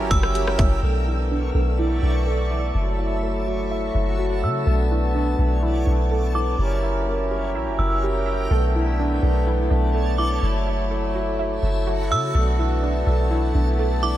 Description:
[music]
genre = hip hop, atmospheric cloud-rap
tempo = 125 BPM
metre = 4/4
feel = half-time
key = B minor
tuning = A4 = 440 Hz
[part]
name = pedal harmonium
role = sustained chords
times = 0.0-14.2 s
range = F#3 to A#4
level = -26 LUFS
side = left 1 dB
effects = sidechain pumping, low-pass filter
[part]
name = warbly dusty pluck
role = arpeggios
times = 0.0-14.2 s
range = D4 to E5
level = -29 LUFS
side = right 3 dB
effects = chorus, low-pass filter, ping-pong delay
[part]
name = soft 808-style bass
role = bass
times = 0.0-14.2 s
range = F#1 to C#3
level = -22 LUFS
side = equal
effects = none
[part]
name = backwards swelling texture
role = texture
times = 0.0-14.2 s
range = E4 to E6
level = -32 LUFS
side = left 1 dB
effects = built-in reverb
[part]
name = metallic FM bell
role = melody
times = 0.1-14.2 s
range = D6 to E6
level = -30 LUFS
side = right 2 dB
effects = chorus, tremolo, low-pass filter, ping-pong delay
[part]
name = trap drum kit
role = drums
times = 0.1-0.7 s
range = hi-hat, kick drum, rim click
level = -21 LUFS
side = equal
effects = vintage 12-bit sampler grit
[sound]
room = light reverb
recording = none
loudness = -19 LUFS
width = side -13 dB against mid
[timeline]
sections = 0.8-14.2 A section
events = filter sweep 0.8-14.2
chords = 0.0 F#7b9; 0.8 Bm11; 2.7 F#m7; 4.7 Bm11; 6.6 F#7b9; 8.5 Bm11; 10.4 F#m7; 12.3 Bm11

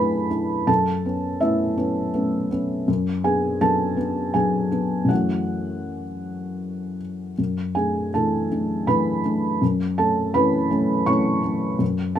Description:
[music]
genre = neoclassical minimalist piano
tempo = 81 BPM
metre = 3/4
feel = rubato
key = unclear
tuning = A4 = 438 Hz
[part]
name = felt-muted upright piano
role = solo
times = 0.0-12.2 s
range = F#2 to C#6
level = -20 LUFS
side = equal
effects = none
[sound]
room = moderate studio ambience, RT60 0.5 s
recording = minimal, uncompressed stereo recording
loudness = -20 LUFS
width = side -10 dB against mid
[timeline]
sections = 0.0-12.2 A section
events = none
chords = 0.0 Dsus2/F#; 0.7 Aadd9/F#; 2.9 Bm/F#; 5.1 F#m7; 7.4 Dsus2/F#; 9.6 Aadd9/F#

